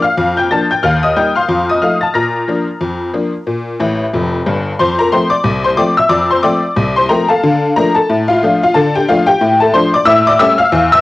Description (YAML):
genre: ragtime piano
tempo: 91 BPM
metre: 2/4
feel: swing 58% on 16ths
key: Bb major, F major from 4.8 s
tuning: A4 = 440 Hz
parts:
  - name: tack piano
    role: solo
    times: 0.0-11.0 s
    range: F1 to Bb6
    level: -10 LUFS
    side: left 2 dB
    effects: none
room: moderate spring reverb, RT60 1.2 s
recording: home recording on cassette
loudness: -11 LUFS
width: side -17 dB against mid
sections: 0.0-4.8 A section; 4.8-11.0 B section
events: honky-tonk piano fill 3.8-4.8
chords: 0.0 Bb; 0.8 Eb; 1.5 F7; 2.1 Bb; 4.8 F; 7.4 Dm; 10.1 A7